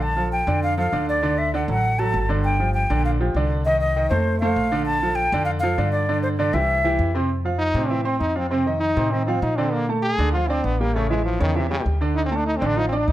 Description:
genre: latin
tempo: 198 BPM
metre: 4/4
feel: straight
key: F major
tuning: A4 = 445 Hz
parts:
  - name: mellow concert flute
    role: melody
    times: 0.0-7.1 s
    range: C5 to A5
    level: -23 LUFS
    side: equal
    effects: none
  - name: clear grand piano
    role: accompaniment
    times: 0.0-13.1 s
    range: C3 to D6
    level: -24 LUFS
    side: right 2 dB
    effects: none
  - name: upright bass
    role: bass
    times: 0.0-13.1 s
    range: G1 to Bb2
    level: -24 LUFS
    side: equal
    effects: none
  - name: brilliant trombone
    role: melody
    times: 7.6-13.1 s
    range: C3 to Ab4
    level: -24 LUFS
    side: equal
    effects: none
room: light reverb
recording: none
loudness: -19 LUFS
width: side -14 dB against mid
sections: 0.0-7.3 A section; 7.3-13.1 B section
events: trombone solo 7.3-13.1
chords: 0.0 Bbmaj7; 1.2 D; 2.4 Gm7; 3.7 Cm; 4.3 F; 4.9 Bbmaj7; 6.1 G5; 6.7 C; 7.3 Fmaj7; 8.5 F7; 9.7 Bbmaj7; 10.9 A7; 12.2 Dm

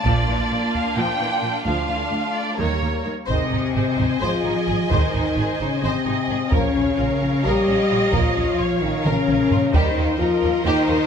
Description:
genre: cinematic, epic orchestral film score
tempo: 261 BPM (eighths)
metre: 7/8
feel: straight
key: unclear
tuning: A4 = 439 Hz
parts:
  - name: warm symphonic violin section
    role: melody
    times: 0.0-11.1 s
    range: Db5 to Ab5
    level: -28 LUFS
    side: left 1 dB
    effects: none
  - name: warm symphonic violin section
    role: second line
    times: 0.0-11.1 s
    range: Bb3 to Eb5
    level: -27 LUFS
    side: left 1 dB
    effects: none
  - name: rich symphonic viola section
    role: accompaniment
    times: 0.0-11.1 s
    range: Db3 to Eb5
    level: -28 LUFS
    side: right 1 dB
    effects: none
  - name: rich symphonic cello section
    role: bass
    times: 0.0-11.1 s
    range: D2 to G3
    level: -26 LUFS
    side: right 1 dB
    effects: none
  - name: rich symphonic double bass section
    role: bass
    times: 0.0-11.0 s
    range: Ab1 to Eb2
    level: -26 LUFS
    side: right 3 dB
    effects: none
  - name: taiko ensemble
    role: drums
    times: 0.1-10.2 s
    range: none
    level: -23 LUFS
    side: right 1 dB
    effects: none
  - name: clear trombone section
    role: sustained chords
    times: 3.3-9.9 s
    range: Eb3 to Bb3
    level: -31 LUFS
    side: right 5 dB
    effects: none
  - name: mellow French horn section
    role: sustained chords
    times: 3.3-11.1 s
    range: C4 to G4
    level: -22 LUFS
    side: left 5 dB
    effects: none
room: light reverb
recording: close, detailed microphones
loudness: -18 LUFS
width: side -7 dB against mid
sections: 0.0-3.3 A section; 3.3-11.1 B section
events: drum fill 9.1-9.7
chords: 0.1 Bb; 1.7 Dm; 2.6 Eb7; 3.3 Ab; 6.5 Bbm; 9.7 Eb

